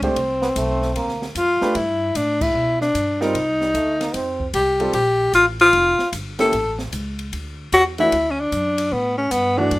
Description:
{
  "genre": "jazz, small-group swing and bop",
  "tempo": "151 BPM",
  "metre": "4/4",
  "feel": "swing 66% on 8ths",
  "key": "unclear",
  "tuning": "A4 = 441 Hz",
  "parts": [
    { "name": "breathy tenor saxophone", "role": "melody", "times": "0.0-9.8 s", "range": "B3 to A4", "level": "-17 LUFS", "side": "left 1 dB", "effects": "none" },
    { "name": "warm grand piano", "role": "accompaniment", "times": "0.0-9.7 s", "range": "E3 to C5", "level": "-23 LUFS", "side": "right 3 dB", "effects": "none" },
    { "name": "upright bass", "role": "bass", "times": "0.0-9.8 s", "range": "F1 to B2", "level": "-28 LUFS", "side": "equal", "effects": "none" },
    { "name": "open jazz drum kit", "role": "drums", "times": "0.0-9.8 s", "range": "crash cymbal, hi-hat, kick drum, ride cymbal, snare drum", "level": "-31 LUFS", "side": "equal", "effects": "none" },
    { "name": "clear trombone", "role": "second line", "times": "0.4-4.5 s", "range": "G3 to C4", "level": "-26 LUFS", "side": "right 2 dB", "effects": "none" }
  ],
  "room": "moderate studio reverb, RT60 0.6 s",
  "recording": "rough home demo mix",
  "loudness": "-17 LUFS",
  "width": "side -19 dB against mid",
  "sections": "0.0-9.8 A section",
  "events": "band accent 2.4",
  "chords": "0.2 Amadd9; 1.0 Dm; 1.8 G; 3.3 Cmadd9; 4.1 F; 4.9 Bb5; 6.5 A; 8.1 D"
}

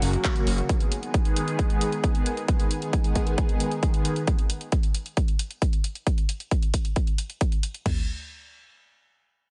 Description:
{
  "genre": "uplifting trance",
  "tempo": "134 BPM",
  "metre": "4/4",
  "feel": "straight",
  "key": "unclear",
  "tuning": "A4 = 439 Hz",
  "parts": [
    { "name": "fat analog bass", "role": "bass", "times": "0.0-0.6 s", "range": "F#1", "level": "-27 LUFS", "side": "equal", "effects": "tube saturation, sidechain pumping" },
    { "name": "big-room dance drum kit", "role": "drums", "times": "0.0-7.8 s", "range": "handclaps, hi-hat", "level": "-36 LUFS", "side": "equal", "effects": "overdrive" },
    { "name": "big-room dance drum kit", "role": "drums", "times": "0.2-8.0 s", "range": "crash cymbal, kick drum, toms", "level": "-26 LUFS", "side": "equal", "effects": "overdrive" }
  ],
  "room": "light reverb",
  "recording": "nothing above 10.3 kHz",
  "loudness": "-25 LUFS",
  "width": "mono",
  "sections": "0.0-7.9 A section; 7.9-9.5 B section",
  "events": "none",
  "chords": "none"
}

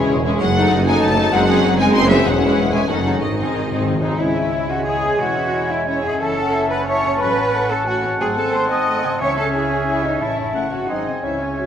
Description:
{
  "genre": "classical, dramatic, fast romantic movement for symphony orchestra",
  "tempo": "174-195 BPM",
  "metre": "3/4",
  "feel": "straight",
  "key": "C# minor",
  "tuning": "A4 = 439 Hz",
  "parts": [
    { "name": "rich symphonic violin section", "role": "melody", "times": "0.0-11.7 s", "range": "D#5 to C#6", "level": "-25 LUFS", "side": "left 3 dB", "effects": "none" },
    { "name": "warm symphonic violin section", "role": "second line", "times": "0.0-11.7 s", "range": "D#4 to G#5", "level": "-27 LUFS", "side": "left 4 dB", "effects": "none" },
    { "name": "warm symphonic viola section", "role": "accompaniment", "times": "0.0-11.7 s", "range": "D#3 to F#4", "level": "-25 LUFS", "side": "right 1 dB", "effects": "none" },
    { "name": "mellow French horn section", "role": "sustained chords", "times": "0.0-11.4 s", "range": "E3 to D#4", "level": "-27 LUFS", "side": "left 3 dB", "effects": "none" },
    { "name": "concert harp", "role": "arpeggios", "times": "0.0-11.7 s", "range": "E2 to D#5", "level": "-27 LUFS", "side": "left 6 dB", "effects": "none" },
    { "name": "rich studio double bass section", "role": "bass", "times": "0.0-11.7 s", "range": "E1 to C#2", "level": "-26 LUFS", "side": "right 3 dB", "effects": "none" },
    { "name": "rich symphonic cello section", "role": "bass", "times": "0.0-11.7 s", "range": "D#3 to D#5", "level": "-23 LUFS", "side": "right 2 dB", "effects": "none" },
    { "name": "warm tuba", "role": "bass", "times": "0.0-4.1 s", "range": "E1 to G#1", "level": "-23 LUFS", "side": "right 3 dB", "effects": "none" },
    { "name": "timpani", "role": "percussion", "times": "3.2-4.1, 9.2-9.7 s", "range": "G#2 to C#3", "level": "-27 LUFS", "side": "left 2 dB", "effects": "none" },
    { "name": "mellow hollow concert flute", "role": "second line", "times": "4.0-11.7 s", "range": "C#5 to D#6", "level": "-25 LUFS", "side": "left 2 dB", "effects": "none" },
    { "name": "mellow clarinet", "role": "second line", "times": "4.2-11.7 s", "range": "C#5 to F#5", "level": "-28 LUFS", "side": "right 1 dB", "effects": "none" },
    { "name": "warm oboe", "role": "second line", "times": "4.2-11.7 s", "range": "G#5 to A5", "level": "-26 LUFS", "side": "equal", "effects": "none" },
    { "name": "warm bassoon", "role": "accompaniment", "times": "4.2-11.7 s", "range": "G#3 to C#4", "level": "-26 LUFS", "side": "equal", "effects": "none" }
  ],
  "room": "wet concert hall reverb, RT60 1.8 s",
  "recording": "none",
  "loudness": "-16 LUFS",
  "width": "side -9 dB against mid",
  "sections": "0.0-4.2 A section; 4.2-11.7 B section",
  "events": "timpani fill 3.2-4.2",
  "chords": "0.4 D#dim/F#; 1.3 G#7/F#; 2.3 C#m/E; 2.9 D#m7b5/F#; 3.2 G#; 4.2 C#m; 5.2 C#m/E; 6.2 F#m7; 7.2 F#m/A; 8.2 G#7b9; 9.2 C#m; 10.2 A; 10.6 F#m; 10.9 G#7"
}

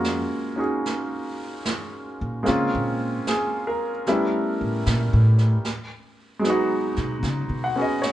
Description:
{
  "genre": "jazz ballad",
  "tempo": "75 BPM",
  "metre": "4/4",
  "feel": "swing 66% on 8ths",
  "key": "unclear",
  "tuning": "A4 = 442 Hz",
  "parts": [
    { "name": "clear baby grand piano", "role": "accompaniment", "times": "0.0-8.1 s", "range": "Gb3 to Gb5", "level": "-24 LUFS", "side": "equal", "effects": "none" },
    { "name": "upright bass", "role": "bass", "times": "0.0-7.8 s", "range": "F2 to Db3", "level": "-22 LUFS", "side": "equal", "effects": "none" },
    { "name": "snare drum and brushed snare drum", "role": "drums", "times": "0.0-8.1 s", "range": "none", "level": "-32 LUFS", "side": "right 2 dB", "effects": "none" }
  ],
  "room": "light reverb",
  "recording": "band playing live in one room, nothing above 10.3 kHz",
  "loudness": "-21 LUFS",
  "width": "side -13 dB against mid",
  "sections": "0.0-8.1 A section",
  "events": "upright bass solo 0.0-8.1",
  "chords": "0.0 Gbmaj9; 2.5 Bbm9; 4.1 A9; 5.6 Abm7"
}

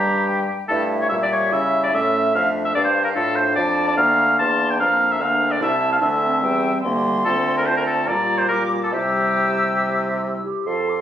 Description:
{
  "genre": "quick classical-period movement for wind quintet",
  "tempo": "145 BPM",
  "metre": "4/4",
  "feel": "straight",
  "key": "D minor",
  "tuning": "A4 = 440 Hz",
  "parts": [
    { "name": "mellow silver concert flute", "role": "melody", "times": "0.0-11.0 s", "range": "E5 to E6", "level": "-25 LUFS", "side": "left 2 dB", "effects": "none" },
    { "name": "clear oboe", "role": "second line", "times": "0.0-11.0 s", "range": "G4 to C6", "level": "-20 LUFS", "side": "equal", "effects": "none" },
    { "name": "dark clarinet", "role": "accompaniment", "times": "0.0-11.0 s", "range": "G3 to A4", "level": "-28 LUFS", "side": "right 3 dB", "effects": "none" },
    { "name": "warm French horn", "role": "accompaniment", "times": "0.0-11.0 s", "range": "G3 to F4", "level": "-29 LUFS", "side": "left 1 dB", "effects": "none" },
    { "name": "clear bassoon", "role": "bass", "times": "0.0-11.0 s", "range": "C2 to C#3", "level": "-24 LUFS", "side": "right 1 dB", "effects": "none" }
  ],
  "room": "light reverb",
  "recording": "recorded on a phone in the room, studio reverb",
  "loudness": "-17 LUFS",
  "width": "side -10 dB against mid",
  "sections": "0.0-10.7 A section",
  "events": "none",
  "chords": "0.0 Edim (rootless); 0.7 A7/G; 2.3 Dm/F; 4.0 Bb/D; 5.6 C; 7.3 Dm7; 8.1 Gm7/Bb; 8.9 C"
}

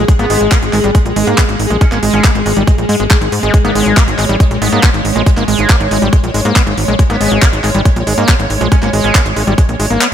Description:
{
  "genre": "psychedelic trance",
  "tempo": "139 BPM",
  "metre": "4/4",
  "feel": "straight",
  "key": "G# minor",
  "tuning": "A4 = 441 Hz",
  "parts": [
    { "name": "pulsing gated texture", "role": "sustained chords", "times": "0.0-10.1 s", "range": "G#3 to C#5", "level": "-17 LUFS", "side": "left 1 dB", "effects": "chorus, built-in reverb, sidechain pumping" },
    { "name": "screaming distorted acid line", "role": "riff", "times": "0.0-10.1 s", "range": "G3 to B3", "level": "-17 LUFS", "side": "moving between left 5 dB and right 6 dB", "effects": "distortion, chorus, auto-pan, sidechain pumping, digital delay" },
    { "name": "tight sequencer bass", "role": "bass", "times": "0.0-10.0 s", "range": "G#1 to G#2", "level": "-16 LUFS", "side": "equal", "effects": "none" },
    { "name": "electronic kick drum", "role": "drums", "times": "0.1-9.7 s", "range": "none", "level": "-11 LUFS", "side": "equal", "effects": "none" },
    { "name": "garage drum kit", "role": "drums", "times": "0.1-10.1 s", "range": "handclaps, hi-hat", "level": "-18 LUFS", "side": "equal", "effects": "none" },
    { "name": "metallic wobble bass", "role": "second line", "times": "0.2-9.2 s", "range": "B3 to C#4", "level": "-24 LUFS", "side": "right 3 dB", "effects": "distortion, lush chorus, sidechain pumping, high-pass filter, dub echo" }
  ],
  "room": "little or no reverb",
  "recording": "none",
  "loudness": "-9 LUFS",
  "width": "side -9 dB against mid",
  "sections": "0.0-10.1 A section",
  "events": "none",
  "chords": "0.0 G#5"
}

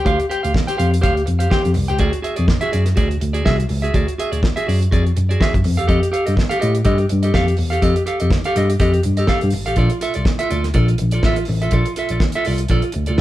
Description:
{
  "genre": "disco",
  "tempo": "123 BPM",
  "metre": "4/4",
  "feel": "swing 56% on 16ths",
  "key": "unclear",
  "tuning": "A4 = 440 Hz",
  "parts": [
    { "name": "clean electric guitar", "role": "accompaniment", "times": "0.0-13.2 s", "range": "F4 to G5", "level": "-20 LUFS", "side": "right 1 dB", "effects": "none" },
    { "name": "tine electric piano", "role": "bass", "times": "0.1-13.2 s", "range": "G#1 to A2", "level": "-18 LUFS", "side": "equal", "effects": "tube saturation" },
    { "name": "damped 70s drum kit", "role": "drums", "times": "0.1-13.2 s", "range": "hi-hat, kick drum, snare drum", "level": "-20 LUFS", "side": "equal", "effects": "none" }
  ],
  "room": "moderate studio reverb, RT60 0.8 s",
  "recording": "band playing live in one room",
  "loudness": "-15 LUFS",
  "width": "side -15 dB against mid",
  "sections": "0.0-13.2 A section",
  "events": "none",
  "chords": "0.0 Dm7; 2.0 E9; 5.6 F9; 9.8 Bbmaj7"
}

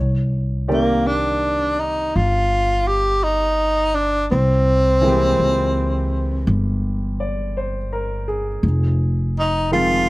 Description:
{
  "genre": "jazz ballad",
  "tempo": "55 BPM",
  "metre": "4/4",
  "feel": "swing 67% on 8ths",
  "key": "C minor",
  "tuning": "A4 = 440 Hz",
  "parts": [
    { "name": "clear grand piano", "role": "accompaniment", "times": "0.0-10.1 s", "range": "Eb3 to D5", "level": "-24 LUFS", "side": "equal", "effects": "none" },
    { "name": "upright bass", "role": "bass", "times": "0.0-10.1 s", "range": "F1 to Db2", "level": "-21 LUFS", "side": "equal", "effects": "none" },
    { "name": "breathy tenor saxophone", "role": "melody", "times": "0.7-10.1 s", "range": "Bb3 to G4", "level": "-18 LUFS", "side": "equal", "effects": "none" }
  ],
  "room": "light reverb",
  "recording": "none",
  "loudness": "-17 LUFS",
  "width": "side -20 dB against mid",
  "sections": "0.0-10.1 A section",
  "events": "none",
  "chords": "0.0 Cm9; 4.3 C7b13; 8.6 Fm7"
}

